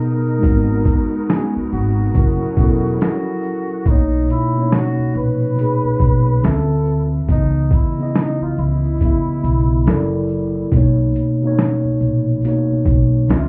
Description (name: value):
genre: lo-fi hip hop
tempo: 70 BPM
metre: 4/4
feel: swing 61% on 16ths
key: B major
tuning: A4 = 440 Hz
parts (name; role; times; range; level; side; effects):
- mellow flugelhorn; melody; 0.0-13.5 s; D#4 to B4; -28 LUFS; equal; low-pass filter, tape echo
- mellow tine electric piano; accompaniment; 0.0-13.5 s; A#2 to E5; -21 LUFS; equal; cassette tape, low-pass filter
- muted studio string section; sustained chords; 0.0-3.8 s; F#3 to A#4; -31 LUFS; equal; low-pass filter
- boom bap sampler-style drum kit; drums; 0.0-13.5 s; hi-hat, kick drum, shaker, snare drum; -19 LUFS; equal; none
- tube shaker; percussion; 0.0-13.5 s; none; -70 LUFS; equal; none
- upright bass; bass; 0.4-13.5 s; E1 to D2; -21 LUFS; equal; none
room: moderate studio reverb, RT60 0.5 s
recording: heard muffled through a wall, club ambience, vinyl crackle, EQ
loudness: -17 LUFS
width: mono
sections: 0.0-3.9 A section; 3.9-13.5 B section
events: none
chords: 0.4 G#m7; 2.1 F#7; 3.9 Bmaj9; 6.4 Dm9; 7.3 C#m9; 9.9 F#7alt; 10.7 Bmaj9